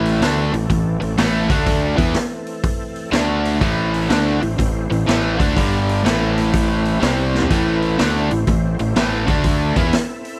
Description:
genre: blues rock power trio and southern rock.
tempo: 123 BPM.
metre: 4/4.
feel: swing 66% on 8ths.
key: A minor.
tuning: A4 = 441 Hz.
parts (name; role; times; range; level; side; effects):
overdriven tonewheel organ; sustained chords; 0.0-10.4 s; E3 to F5; -32 LUFS; equal; none.
crunchy overdriven guitar; riff; 0.0-9.9 s; G2 to E4; -21 LUFS; equal; none.
fuzz fingered electric bass; bass; 0.0-9.9 s; G1 to E2; -24 LUFS; equal; overdrive.
raw garage drum kit; drums; 0.1-10.3 s; hi-hat, kick drum, snare drum, toms; -24 LUFS; equal; none.
room: small room ambience.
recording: dry, close 1970s-style studio recording.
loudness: -18 LUFS.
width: mono.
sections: 0.0-10.4 A section.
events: drum fill 7.3.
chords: 0.0 Am; 1.4 D5; 1.9 Am; 3.1 D5; 3.6 Am; 5.6 G5; 6.0 Am; 7.0 C5; 7.5 Am; 9.2 D5; 9.7 Am.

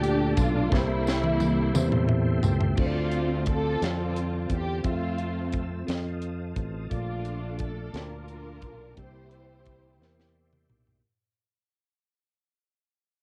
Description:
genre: slow gospel.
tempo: 58 BPM (dotted quarters).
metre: 6/8.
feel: straight.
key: unclear.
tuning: A4 = 440 Hz.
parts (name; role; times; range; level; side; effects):
dark studio string section; melody; 0.0-10.3 s; G3 to C5; -33 LUFS; equal; cassette tape.
mellow tine electric piano; accompaniment; 0.0-11.1 s; Bb2 to A5; -35 LUFS; equal; cassette tape.
tonewheel organ; sustained chords; 0.0-11.0 s; F4 to E6; -43 LUFS; equal; fast rotary speaker, chorus vibrato, cassette tape.
fingered electric bass; bass; 0.0-11.0 s; A1 to F2; -32 LUFS; equal; none.
crisp fusion drum kit; drums; 0.0-11.0 s; crash cymbal, hi-hat, kick drum, snare drum, toms; -31 LUFS; equal; none.
tambourine; percussion; 0.4-2.8 s; none; -45 LUFS; equal; none.
room: studio reverb.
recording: home recording on cassette.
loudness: -27 LUFS.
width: mono.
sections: 0.0-2.8 A section; 2.8-11.0 B section.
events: drum fill 0.7-2.8, 10.0-11.0; tine electric piano fill 1.7-2.8; fade-out 2.8-11.0.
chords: 0.0 Bbmaj7; 0.7 C7; 2.8 Dm7; 4.8 Fmaj7; 5.9 F7; 6.9 Bbmaj7; 9.0 C7.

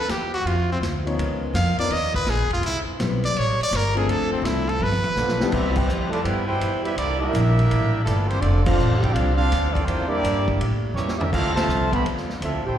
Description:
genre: jazz, big band swing.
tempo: 166 BPM.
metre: 4/4.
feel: swing 66% on 8ths.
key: C major.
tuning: A4 = 440 Hz.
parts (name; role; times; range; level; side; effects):
brilliant trumpet; melody; 0.0-5.5 s; C4 to F5; -24 LUFS; right 1 dB; slapback echo.
mellow saxophone section; sustained chords; 0.0-12.8 s; C#3 to Bb4; -35 LUFS; left 1 dB; none.
upright bass; bass; 0.0-12.8 s; F1 to A2; -23 LUFS; equal; none.
vintage drum kit; drums; 0.1-12.5 s; crash cymbal, hi-hat, kick drum, ride cymbal, snare drum, toms; -30 LUFS; equal; none.
warm grand piano; accompaniment; 1.1-5.9 s; E3 to Db5; -26 LUFS; left 5 dB; slapback echo.
warm trombone section; second line; 5.1-12.8 s; Bb2 to G4; -27 LUFS; right 3 dB; slapback echo.
warm trumpet section; melody; 5.2-12.8 s; G3 to B5; -26 LUFS; right 1 dB; slapback echo.
room: light reverb.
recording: live gig heard through the venue's PA, recital hall reverb.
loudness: -20 LUFS.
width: side -10 dB against mid.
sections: 0.0-5.5 A section; 5.5-12.8 B section.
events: trumpet solo 0.0-5.5; drum fill 4.8-5.5, 11.0-11.3; band accent 5.7, 8.6, 11.5.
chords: 0.0 Dm9; 1.2 Db13; 2.6 Cmaj7; 3.4 A7b9; 4.1 Dm7; 4.8 G9; 5.5 Cmaj7; 7.0 C13; 8.4 F6; 9.9 Em7b5; 10.6 A7b9; 11.3 Dm9.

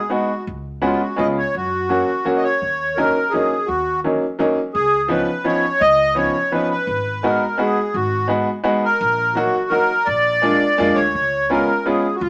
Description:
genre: musette waltz.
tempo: 169 BPM.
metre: 3/4.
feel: straight.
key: Eb minor.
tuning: A4 = 440 Hz.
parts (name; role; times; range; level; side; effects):
accordion; melody; 0.0-12.3 s; E#4 to D#5; -21 LUFS; equal; light tremolo tuning.
bright upright piano; accompaniment; 0.1-12.0 s; F3 to F#4; -22 LUFS; equal; none.
upright bass; bass; 0.5-12.3 s; Ab1 to F#2; -32 LUFS; equal; none.
room: moderate studio reverb, RT60 0.9 s.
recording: none.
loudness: -19 LUFS.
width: mono.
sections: 0.0-2.6 A section; 2.6-12.3 B section.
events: none.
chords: 0.5 C#7sus4; 1.2 C#7; 1.5 F#; 2.6 Ebm7; 4.7 Db9; 6.9 Abm7; 9.0 Ebm/Bb; 10.1 Bb7; 11.1 Db7.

